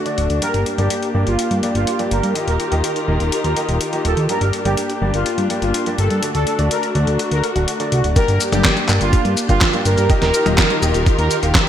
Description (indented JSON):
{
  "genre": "italo disco",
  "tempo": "124 BPM",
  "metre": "4/4",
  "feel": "straight",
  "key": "G minor",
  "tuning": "A4 = 440 Hz",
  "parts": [
    { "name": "dark studio string section", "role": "sustained chords", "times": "0.0-11.7 s", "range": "Eb3 to Bb4", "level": "-23 LUFS", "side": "left 2 dB", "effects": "none" },
    { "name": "clear grand piano", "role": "stabs", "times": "0.1-11.6 s", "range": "G2 to F#5", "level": "-24 LUFS", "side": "equal", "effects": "low-pass filter" },
    { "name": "dusty soul sampler-style drum kit", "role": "drums", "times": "0.1-11.6 s", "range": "cabasa, handclaps, hi-hat, snare drum, toms", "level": "-22 LUFS", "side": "left 1 dB", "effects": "studio ambience, gated reverb" },
    { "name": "fat analog bass", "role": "bass", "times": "0.2-11.5 s", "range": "D1 to G2", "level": "-19 LUFS", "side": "equal", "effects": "none" },
    { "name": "analog synth brass", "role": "melody", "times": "0.4-11.3 s", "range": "F4 to Bb4", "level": "-22 LUFS", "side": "right 1 dB", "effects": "chorus, vintage 12-bit sampler grit, ping-pong delay" },
    { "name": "electronic kick drum", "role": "drums", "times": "8.2-11.6 s", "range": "none", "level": "-16 LUFS", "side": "equal", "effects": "studio ambience" }
  ],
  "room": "moderate plate reverb, RT60 2.8 s",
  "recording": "bright 1980s-style digital production",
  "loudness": "-15 LUFS",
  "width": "side -10 dB against mid",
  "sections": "0.0-8.2 A section; 8.2-11.7 B section",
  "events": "none",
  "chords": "0.4 Gm; 2.4 Ebadd9; 4.3 Gm; 6.2 D; 8.2 Gm; 10.1 Ebadd9"
}